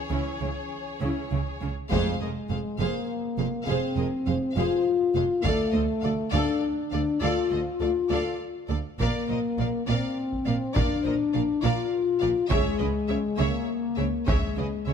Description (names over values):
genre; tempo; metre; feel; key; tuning
cinematic, epic orchestral film score; 68 BPM (dotted quarters); 6/8; straight; unclear; A4 = 441 Hz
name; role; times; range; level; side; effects
warm symphonic violin section; second line; 0.0-14.9 s; Ab4 to D5; -36 LUFS; left 3 dB; none
mellow French horn section; sustained chords; 0.0-14.9 s; Fb3 to F4; -27 LUFS; left 5 dB; none
dark symphonic viola section; accompaniment; 0.1-14.9 s; Db4 to Bb4; -35 LUFS; right 2 dB; none
rich symphonic cello section; bass; 0.1-14.9 s; D2 to Db3; -32 LUFS; right 4 dB; none
warm symphonic double bass section; bass; 0.1-14.9 s; F1 to D2; -31 LUFS; right 5 dB; none
warm symphonic violin section; melody; 1.9-14.9 s; Eb5 to F5; -37 LUFS; left 4 dB; none
solo taiko drums; drums; 1.9-14.8 s; none; -29 LUFS; equal; none
room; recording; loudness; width
light reverb; close, detailed microphones; -24 LUFS; side -7 dB against mid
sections
0.0-1.9 A section; 1.9-14.9 B section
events
build-up 0.0-1.9; band accent 1.9-2.5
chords
0.0 Dbm; 1.9 Fm; 5.5 Dm; 9.0 Bb; 12.5 Dbm